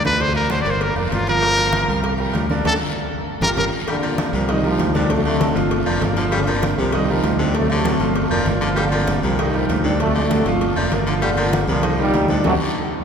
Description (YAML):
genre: latin, salsa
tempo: 196 BPM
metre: 4/4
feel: straight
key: G minor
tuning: A4 = 442 Hz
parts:
  - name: bright trumpet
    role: melody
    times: 0.0-3.7 s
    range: D4 to D5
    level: -22 LUFS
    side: equal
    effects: none
  - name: modern bright fingered electric bass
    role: bass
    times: 0.0-12.6 s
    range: F1 to D2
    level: -23 LUFS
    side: equal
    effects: none
  - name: congas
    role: percussion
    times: 0.0-12.5 s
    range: none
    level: -27 LUFS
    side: left 2 dB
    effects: none
  - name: guiro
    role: percussion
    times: 0.0-12.5 s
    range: none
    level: -36 LUFS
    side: left 4 dB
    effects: none
  - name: bright grand piano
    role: accompaniment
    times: 0.1-12.5 s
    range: D3 to F5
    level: -24 LUFS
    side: right 2 dB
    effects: none
  - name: agogo bells and timbales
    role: percussion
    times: 0.2-12.5 s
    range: none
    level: -31 LUFS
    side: right 5 dB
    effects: none
  - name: cowbell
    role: percussion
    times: 0.2-12.5 s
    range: none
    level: -31 LUFS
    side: left 4 dB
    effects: none
  - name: dark trombone section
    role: melody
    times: 3.9-12.5 s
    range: F2 to Eb4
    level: -21 LUFS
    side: equal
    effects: none
  - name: edgy baritone saxophone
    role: second line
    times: 3.9-13.0 s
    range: C3 to G3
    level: -26 LUFS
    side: left 2 dB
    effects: none
room: wet cathedral reverb, RT60 6.5 s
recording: recorded in a church or concert hall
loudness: -16 LUFS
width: side -7 dB against mid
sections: 0.0-3.9 A section; 3.9-13.0 B section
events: trumpet solo 0.0-3.9; band accent 2.7-3.9, 12.4-13.0; drum fill 3.1-3.9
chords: 0.2 D; 0.8 Gm7; 2.0 C5; 2.7 D; 3.3 Gm7; 4.5 Cm7; 5.1 D7; 5.7 Gm7; 6.9 Cm7; 7.5 D7; 8.2 Gm7; 9.4 Cm7; 10.0 D7; 10.6 Gm7; 11.8 Cm7; 12.4 D